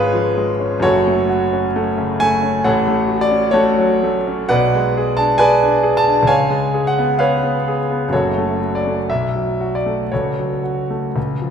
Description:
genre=classical, romantic character piece for solo piano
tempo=56-69 BPM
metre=2/4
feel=rubato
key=F# minor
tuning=A4 = 441 Hz
part: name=clear concert grand piano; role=solo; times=0.0-11.5 s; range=F#1 to A5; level=-14 LUFS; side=equal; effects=none
room=wet scoring stage reverb, RT60 2.0 s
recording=recorded in a church or concert hall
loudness=-15 LUFS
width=side -7 dB against mid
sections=0.0-11.5 A section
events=none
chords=0.0 C#7/G#; 0.8 F#m; 2.6 F#m/A; 4.5 G#dim/B; 6.3 C#7; 8.1 F#m; 9.1 B5; 10.1 F#m/C#

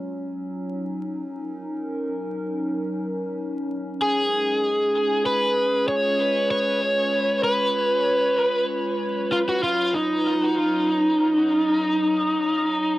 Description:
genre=ambient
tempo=free time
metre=none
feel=none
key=Eb minor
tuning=A4 = 440 Hz
part: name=warbly tape-like pad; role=sustained chords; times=0.0-13.0 s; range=Gb3 to Bb5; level=-28 LUFS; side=equal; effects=chorus, built-in reverb, plate reverb
part: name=overdriven slide guitar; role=melody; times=4.0-13.0 s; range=Eb4 to Db5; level=-20 LUFS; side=equal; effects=cassette tape, dub echo, plate reverb
room=moderate booth ambience, RT60 0.2 s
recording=home recording on cassette, vinyl crackle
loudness=-20 LUFS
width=side -17 dB against mid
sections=0.0-13.0 A section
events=none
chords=0.0 Ebm7; 4.0 Db7; 9.0 Ebm7

